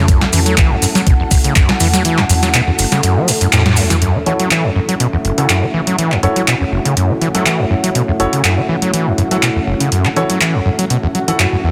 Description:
acid house; 122 BPM; 4/4; swing 54% on 16ths; F# minor pentatonic; A4 = 441 Hz
dark analog pad; sustained chords; 0.0-11.7 s; A3 to F#5; -25 LUFS; equal; chorus, sidechain pumping
overdriven acid bass; riff; 0.0-11.7 s; F#1 to F#3; -18 LUFS; equal; distortion, sidechain pumping, delay
granular cloud pad; texture; 0.0-11.7 s; C#4 to A5; -26 LUFS; equal; built-in reverb, sidechain pumping
booming analog drum machine; drums; 0.1-11.5 s; handclaps, hi-hat, snare drum, toms; -19 LUFS; equal; overdrive
electronic kick drum; drums; 0.1-1.7 s; -14 LUFS; equal
maracas; percussion; 0.1-4.0 s; -25 LUFS; equal
warm baby grand piano; stabs; 4.3-11.5 s; E4 to F#5; -23 LUFS; equal; low-pass filter, delay
swell; sound effects; 11.1-11.7 s; -27 LUFS; equal
moderate lush hall reverb, RT60 1.6 s; dense, heavily limited modern master; -14 LUFS; mono
0.0-4.0 A section; 4.0-11.7 B section
filter sweep on acid bass 0.0-4.0; kick drops out 2.0-4.0; band accent 3.5; filter sweep on grand piano 4.0-11.7; swell 11.1-11.7
0.0 F#m7

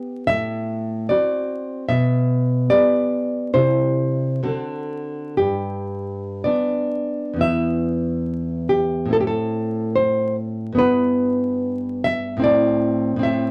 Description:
romantic piece for solo classical guitar; 53-77 BPM; 2/4; rubato; G major, E minor from 7.4 s; A4 = 444 Hz
nylon-string guitar; solo; 0.0-13.5 s; E2 to E5; -21 LUFS; equal
moderate studio reverb, RT60 0.5 s; vinyl crackle; -21 LUFS; mono
0.0-7.4 A section; 7.4-13.5 B section
0.3 D7/A; 1.9 G/B; 3.5 C; 4.4 D7; 5.4 G; 7.4 E5; 9.1 Am; 10.8 Em/G; 12.4 Am

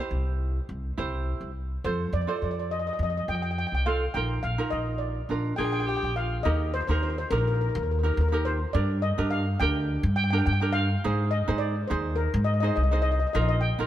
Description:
calypso; 104 BPM; 4/4; straight; Eb major; A4 = 440 Hz
steel pan; melody; 0.0-13.9 s; Bb4 to G5; -30 LUFS; left 2 dB
ukulele; accompaniment; 0.0-13.9 s; D4 to C5; -31 LUFS; right 3 dB
upright bass; bass; 0.1-13.9 s; Bb1 to Ab2; -27 LUFS; equal
breathy alto saxophone; second line; 5.6-6.4 s; F4 to Ab4; -34 LUFS; left 4 dB
light reverb; heard from further back in the room; -24 LUFS; side -12 dB against mid
0.0-6.4 A section; 6.4-13.9 B section
0.0 C; 1.8 F; 4.1 Bbsus4; 5.3 Bb; 6.4 Eb; 8.7 Gm; 11.0 Ab; 13.3 Bbsus4

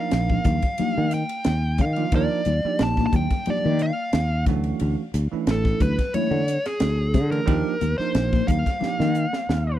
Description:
electric jazz fusion; 90 BPM; 4/4; swing 54% on 16ths; Eb lydian; A4 = 440 Hz
dark smooth lead guitar; melody; 0.0-9.8 s; Ab4 to A5; -27 LUFS; equal; overdrive
bell-like tine electric piano; accompaniment; 0.0-9.7 s; E3 to Bb4; -28 LUFS; right 8 dB; medium stereo tremolo, wide subtle chorus
sustaining fretless electric bass; bass; 0.1-9.8 s; A1 to Eb3; -23 LUFS; equal
crisp fusion drum kit; drums; 0.1-9.7 s; hi-hat, kick drum, ride cymbal, snare drum; -25 LUFS; equal
congas; percussion; 0.3-9.1 s; -30 LUFS; left 13 dB
little or no reverb; -20 LUFS; side -12 dB against mid
0.0-9.8 A section
drum fill 8.8-9.8
0.0 Ebmaj9; 4.5 Dmaj9; 7.5 Ebmaj9

